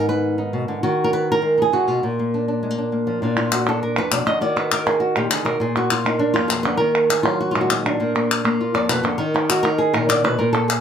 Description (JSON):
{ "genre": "flamenco", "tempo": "201 BPM", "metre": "4/4", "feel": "straight", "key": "Bb phrygian dominant", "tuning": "A4 = 440 Hz", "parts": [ { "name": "flamenco guitar", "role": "melody", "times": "0.0-10.8 s", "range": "F2 to F5", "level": "-18 LUFS", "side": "equal", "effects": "none" }, { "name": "palmas hand claps", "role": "percussion", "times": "3.4-10.8 s", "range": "none", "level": "-22 LUFS", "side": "left 1 dB", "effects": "none" } ], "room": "moderate studio reverb, RT60 0.5 s", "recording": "none", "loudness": "-17 LUFS", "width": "side -8 dB against mid", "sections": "0.0-3.2 A section; 3.2-10.8 B section", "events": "nylon-string guitar solo 3.2-10.8", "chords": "0.0 Abm; 0.8 Ebm; 2.0 Bb; 4.4 Ebm; 5.6 Bb; 6.8 Ebm; 8.0 Bb; 9.2 Eb5", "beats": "0.22 0.52 | 0.82 1.12 1.42 1.72 | 2.02 2.32 2.62 2.92 | 3.22 3.52 3.82 4.12 | 4.42 4.71 5.01 5.31 | 5.61 5.91 6.21 6.51 | 6.81 7.11 7.41 7.70 | 8.00 8.30 8.60 8.90 | 9.20 9.50 9.80 10.10 | 10.40 10.70" }